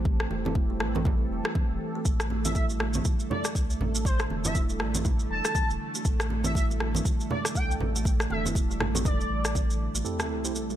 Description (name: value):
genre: afro house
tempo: 120 BPM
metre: 4/4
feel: swing 59% on 16ths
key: unclear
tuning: A4 = 440 Hz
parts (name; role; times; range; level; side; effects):
- warm analog pad; sustained chords; 0.0-10.8 s; C3 to A4; -38 LUFS; equal; chorus, sidechain pumping
- kalimba; arpeggios; 0.0-10.8 s; E3 to E4; -34 LUFS; right 4 dB; sidechain pumping, low-pass filter, tape echo
- warm sub bass; bass; 0.0-10.0 s; E1 to C2; -31 LUFS; equal; sidechain pumping
- electronic kick drum; drums; 0.1-9.7 s; none; -26 LUFS; equal; none
- electronic rim click; drums; 0.2-10.3 s; none; -33 LUFS; left 1 dB; none
- congas; percussion; 0.3-9.7 s; none; -33 LUFS; right 2 dB; none
- maracas; percussion; 2.1-10.8 s; none; -34 LUFS; right 2 dB; none
- expressive portamento lead; melody; 2.4-9.6 s; C5 to A5; -35 LUFS; left 1 dB; ensemble chorus, tape echo
- tine electric piano; stabs; 10.0-10.5 s; C4 to C5; -35 LUFS; right 2 dB; medium stereo tremolo, sidechain pumping, low-pass filter, tape echo
- sub drop; sound effects; 10.1-10.8 s; none; -36 LUFS; equal; none
room: digital ambience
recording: none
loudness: -25 LUFS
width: side -11 dB against mid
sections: 0.0-10.1 A section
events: impact 10.1-10.8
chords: 0.0 Am7; 2.1 D5; 10.1 Am7